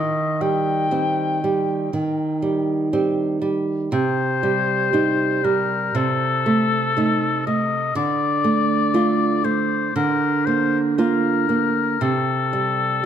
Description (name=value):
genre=romantic duo for oboe and classical guitar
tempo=59 BPM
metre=4/4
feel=rubato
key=unclear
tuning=A4 = 440 Hz
part: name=warm oboe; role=melody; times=0.0-13.1 s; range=A4 to G5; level=-22 LUFS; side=left 6 dB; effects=tape echo
part: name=nylon-string guitar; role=accompaniment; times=0.0-13.1 s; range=C3 to F4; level=-20 LUFS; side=right 3 dB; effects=none
room=moderate recital hall reverb, RT60 1.3 s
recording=none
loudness=-18 LUFS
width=side -9 dB against mid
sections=0.0-13.1 A section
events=none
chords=0.0 Cm/Eb; 3.9 Cm; 6.0 Adim/C; 8.0 Dm; 9.9 Bb/D; 12.0 C5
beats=0.92 1.93 2.93 | 3.93 4.94 5.95 6.97 | 7.96 8.94 9.95 10.97 | 12.00 13.04